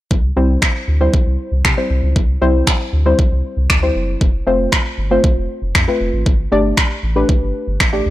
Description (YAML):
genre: dance-pop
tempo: 117 BPM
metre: 4/4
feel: straight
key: C major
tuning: A4 = 441 Hz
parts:
  - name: warm sub bass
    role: bass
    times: 0.1-8.1 s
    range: F1 to C3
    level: -17 LUFS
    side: equal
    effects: sidechain pumping
  - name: pop drum kit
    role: drums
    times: 0.1-7.9 s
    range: finger snaps, kick drum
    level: -15 LUFS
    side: equal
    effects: overdrive
  - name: soft round pluck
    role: accompaniment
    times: 0.4-8.1 s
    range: G3 to D5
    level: -18 LUFS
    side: left 1 dB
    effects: chorus, sidechain pumping
room: little or no reverb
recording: dry, gritty hardware recording, cassette tape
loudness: -13 LUFS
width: side -15 dB against mid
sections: 0.1-8.1 A section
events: none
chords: 0.1 C; 4.2 F; 6.3 Gsus2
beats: | 0.11 0.62 1.13 1.65 | 2.16 2.67 3.19 3.70 | 4.21 4.72 5.24 5.75 | 6.26 6.78 7.29 7.80